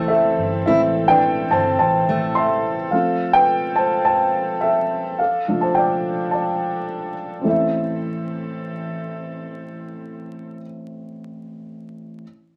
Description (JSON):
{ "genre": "pop", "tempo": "106 BPM", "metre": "4/4", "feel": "straight", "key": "A minor", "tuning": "A4 = 442 Hz", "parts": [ { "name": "dark baby grand piano", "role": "accompaniment", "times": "0.0-12.2 s", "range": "A1 to C6", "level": "-21 LUFS", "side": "equal", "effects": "none" }, { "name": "rich studio string section", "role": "sustained chords", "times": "0.0-10.5 s", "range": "E3 to A4", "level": "-34 LUFS", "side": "equal", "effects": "none" }, { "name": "fingerpicked steel-string acoustic guitar", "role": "riff", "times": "0.0-2.5 s", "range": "A3 to E4", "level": "-29 LUFS", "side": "equal", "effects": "none" }, { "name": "vintage muted fingered electric bass", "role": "bass", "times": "0.0-2.9 s", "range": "G1 to C2", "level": "-32 LUFS", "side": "equal", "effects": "none" } ], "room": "moderate studio reverb, RT60 0.6 s", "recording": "vinyl crackle", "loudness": "-20 LUFS", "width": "mono", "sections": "0.0-7.5 A section; 7.5-9.7 B section", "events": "grand piano solo 0.0-7.5", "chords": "0.0 Am; 2.9 F; 5.2 Dm; 7.5 Am", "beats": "0.10 | 0.66 1.23 1.79 2.36 | 2.93 3.49 4.06 4.62 | 5.19 5.76 6.32 6.89 | 7.46 8.02 8.59 9.15" }